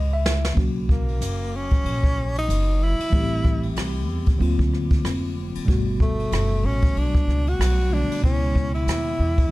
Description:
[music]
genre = hip hop, jazz-hop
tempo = 94 BPM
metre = 4/4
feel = swing 58% on 16ths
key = unclear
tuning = A4 = 440 Hz
[part]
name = tine electric piano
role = accompaniment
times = 0.0-9.5 s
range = B2 to E5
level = -28 LUFS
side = left 1 dB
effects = medium stereo tremolo
[part]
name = upright bass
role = bass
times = 0.0-9.5 s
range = E#1 to E2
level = -24 LUFS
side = equal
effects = none
[part]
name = jazz brush drum kit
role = drums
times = 0.3-9.5 s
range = hi-hat, kick drum, ride cymbal, rim click, snare drum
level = -23 LUFS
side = equal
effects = none
[part]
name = breathy tenor saxophone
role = melody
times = 0.9-9.5 s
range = A3 to F#4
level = -27 LUFS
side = equal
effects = none
[sound]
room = light reverb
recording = dark, warm production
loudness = -20 LUFS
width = side -18 dB against mid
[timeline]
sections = 0.6-9.5 A section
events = drum fill 0.0-0.6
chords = 0.0 A (rootless); 0.6 Bsus2; 3.1 Am7; 4.4 D7alt; 5.7 Gmaj9; 8.2 C#m7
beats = | 0.57 1.21 1.85 2.49 | 3.12 3.76 4.40 5.04 | 5.68 6.32 6.95 7.59 | 8.23 8.87 9.51

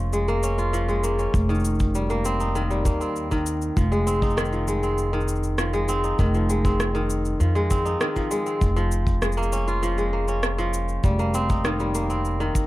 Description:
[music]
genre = folktronica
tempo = 99 BPM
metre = 4/4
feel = straight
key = F minor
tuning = A4 = 436 Hz
[part]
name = kora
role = arpeggios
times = 0.0-12.7 s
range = Eb3 to F4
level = -24 LUFS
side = equal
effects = vintage 12-bit sampler grit, ping-pong delay
[part]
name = upright bass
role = bass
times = 0.0-12.5 s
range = F1 to F2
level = -24 LUFS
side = equal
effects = none
[part]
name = electronic shaker and rim click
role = drums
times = 0.1-12.7 s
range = none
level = -30 LUFS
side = equal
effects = overdrive
[part]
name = kick drum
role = drums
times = 1.3-12.7 s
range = none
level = -23 LUFS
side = equal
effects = none
[sound]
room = light reverb, small room ambience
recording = vinyl crackle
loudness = -21 LUFS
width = side -17 dB against mid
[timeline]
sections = 0.0-12.7 A section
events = none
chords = 0.0 Db6/F; 1.3 Cm7/F; 3.8 Fm7; 8.6 Db6/F; 11.0 Cm7/F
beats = 0.13 0.74 | 1.34 1.95 2.56 3.16 | 3.77 4.37 4.98 5.59 | 6.19 6.80 7.40 8.01 | 8.62 9.22 9.83 10.43 | 11.04 11.65 12.25

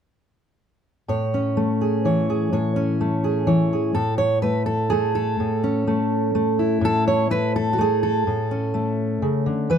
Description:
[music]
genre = folk, solo fingerstyle acoustic guitar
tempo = 126 BPM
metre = 3/4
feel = straight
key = A major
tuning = A4 = 441 Hz
[part]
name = fingerpicked steel-string acoustic guitar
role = solo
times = 1.1-9.8 s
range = A2 to C#5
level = -19 LUFS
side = equal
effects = none
[sound]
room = light reverb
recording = none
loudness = -19 LUFS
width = side -8 dB against mid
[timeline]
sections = 1.1-4.0 A section; 4.0-9.8 B section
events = none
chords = 1.1 Amaj7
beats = | 1.09 1.57 2.05 | 2.52 3.00 3.47 | 3.95 4.43 4.92 | 5.40 5.88 6.35 | 6.83 7.31 7.78 | 8.26 8.73 9.21 | 9.70

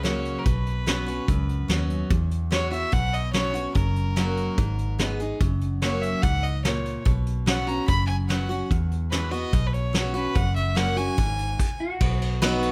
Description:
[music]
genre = honky-tonk and classic country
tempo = 145 BPM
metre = 4/4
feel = straight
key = B major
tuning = A4 = 440 Hz
[part]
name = clear fiddle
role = second line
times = 0.0-11.8 s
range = A#4 to B5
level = -33 LUFS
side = equal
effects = none
[part]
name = picked steel-string acoustic guitar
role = accompaniment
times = 0.0-12.7 s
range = E2 to G#4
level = -32 LUFS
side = equal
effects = none
[part]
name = vintage muted fingered electric bass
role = bass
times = 0.0-12.7 s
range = F#1 to E2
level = -29 LUFS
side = equal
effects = none
[part]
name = vintage brush drum kit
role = drums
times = 0.0-12.7 s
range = crash cymbal, hi-hat, kick drum, ride cymbal, snare drum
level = -28 LUFS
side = equal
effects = none
[part]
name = electric guitar through a small old amp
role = melody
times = 11.8-12.7 s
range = F#4 to B4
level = -34 LUFS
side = equal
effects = none
[sound]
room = little or no reverb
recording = close, detailed microphones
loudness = -25 LUFS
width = mono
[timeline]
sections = 0.0-12.0 A section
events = fiddle solo 0.0-12.0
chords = 0.5 Bsus2; 2.1 Eadd9; 2.9 Bsus2; 3.8 F#; 4.6 G#m; 5.4 F#; 7.1 Bsus2; 8.7 Eadd9; 9.5 Bsus2; 10.4 F#; 11.2 F#sus2/G#; 12.0 B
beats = 0.04 | 0.46 0.87 1.28 1.69 | 2.11 2.52 2.93 3.34 | 3.75 4.17 4.58 4.99 | 5.41 5.82 6.23 6.64 | 7.05 7.47 7.88 8.29 | 8.71 9.12 9.53 9.94 | 10.36 10.77 11.18 11.60 | 12.01 12.42

